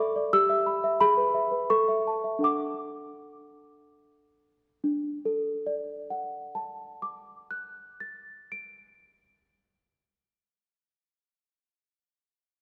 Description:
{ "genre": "classical, lullaby for celesta", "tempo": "70-90 BPM", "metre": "3/4", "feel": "straight", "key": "D major", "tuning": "A4 = 440 Hz", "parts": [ { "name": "small celesta", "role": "solo", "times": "0.0-12.2 s", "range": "D4 to D7", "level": "-28 LUFS", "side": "equal", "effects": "none" } ], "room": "wet concert hall reverb, RT60 1.9 s", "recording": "dark, warm production", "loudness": "-27 LUFS", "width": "mono", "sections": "0.0-4.8 A section; 4.8-9.9 B section", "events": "slowing down 0.0-4.8", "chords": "0.3 Em/G; 1.0 E/G#; 1.7 A; 2.4 D" }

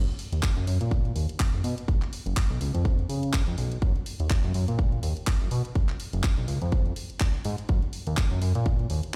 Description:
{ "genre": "filtered disco house", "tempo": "124 BPM", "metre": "4/4", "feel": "swing 56% on 16ths", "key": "F# major", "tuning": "A4 = 440 Hz", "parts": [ { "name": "fat analog bass", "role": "bass", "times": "0.0-9.0 s", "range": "F#1 to C#3", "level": "-29 LUFS", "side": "equal", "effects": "sidechain pumping, low-pass filter" }, { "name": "house drum kit", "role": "drums", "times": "0.1-9.1 s", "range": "handclaps, hi-hat", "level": "-38 LUFS", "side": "equal", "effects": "sidechain pumping on hats, sidechain pumping on cymbals" }, { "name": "electronic kick drum", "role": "drums", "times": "0.4-8.8 s", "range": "none", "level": "-27 LUFS", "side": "equal", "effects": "none" } ], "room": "little or no reverb", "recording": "played on a big sound system in a bare room, stone room reverb", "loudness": "-27 LUFS", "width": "mono", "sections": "0.0-9.2 A section", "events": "filter sweep on analog synth bass 0.0-9.2", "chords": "none" }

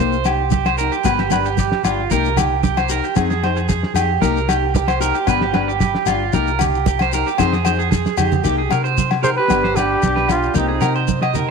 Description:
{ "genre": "highlife guitar band", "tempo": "114 BPM", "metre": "4/4", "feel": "straight", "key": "C minor", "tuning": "A4 = 439 Hz", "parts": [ { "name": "fingerpicked steel-string acoustic guitar", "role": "accompaniment", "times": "0.0-11.5 s", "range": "Bb3 to Ab4", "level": "-24 LUFS", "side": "left 13 dB", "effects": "none" }, { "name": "electric guitar at the edge of break-up", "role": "arpeggios", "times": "0.0-11.5 s", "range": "F4 to Eb5", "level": "-20 LUFS", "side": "right 12 dB", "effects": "wide subtle chorus, tape echo" }, { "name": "fingered electric bass", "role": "bass", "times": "0.0-11.5 s", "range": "G1 to C3", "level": "-22 LUFS", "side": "left 1 dB", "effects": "none" }, { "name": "congas", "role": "percussion", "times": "0.0-11.5 s", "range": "none", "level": "-25 LUFS", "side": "right 11 dB", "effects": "none" }, { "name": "shekere", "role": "percussion", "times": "0.1-11.5 s", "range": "none", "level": "-28 LUFS", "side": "left 11 dB", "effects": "none" }, { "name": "cloth-damped thuddy drum kit", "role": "drums", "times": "0.3-11.3 s", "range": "kick drum, snare drum", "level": "-23 LUFS", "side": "equal", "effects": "none" }, { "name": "agogo bells", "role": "percussion", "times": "0.3-11.4 s", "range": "none", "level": "-25 LUFS", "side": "left 13 dB", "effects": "none" }, { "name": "mellow trumpet", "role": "melody", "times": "9.2-11.1 s", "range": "Eb4 to C5", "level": "-20 LUFS", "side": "left 1 dB", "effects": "none" }, { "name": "clear alto saxophone", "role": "second line", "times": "9.2-11.1 s", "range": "C4 to Ab4", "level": "-25 LUFS", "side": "right 12 dB", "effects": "none" } ], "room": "light reverb, small room ambience", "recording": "1960s-style stereo with parts hard left and right", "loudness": "-15 LUFS", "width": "side -5 dB against mid", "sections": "0.0-8.4 A section; 8.4-11.5 B section", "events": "drum fill 8.0-8.4", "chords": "0.0 Cm7; 1.0 G; 2.1 Cm7; 3.2 Fm7; 4.2 Cm7; 5.3 G; 6.3 Cm7; 7.4 Fm7; 8.4 Cm7; 9.5 G; 10.6 Cm7" }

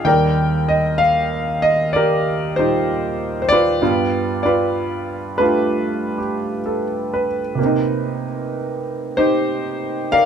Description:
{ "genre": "solo jazz", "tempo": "64 BPM", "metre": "4/4", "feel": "swing 68% on 8ths", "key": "unclear", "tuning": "A4 = 440 Hz", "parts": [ { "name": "warm concert grand piano", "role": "solo", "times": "0.0-10.3 s", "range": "Eb2 to G5", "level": "-16 LUFS", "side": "equal", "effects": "none" } ], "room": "moderate studio reverb, RT60 0.8 s", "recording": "none", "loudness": "-17 LUFS", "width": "side -8 dB against mid", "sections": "0.0-10.3 A section", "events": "none", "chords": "0.0 Ebmaj7; 3.8 G7; 7.6 Cm7" }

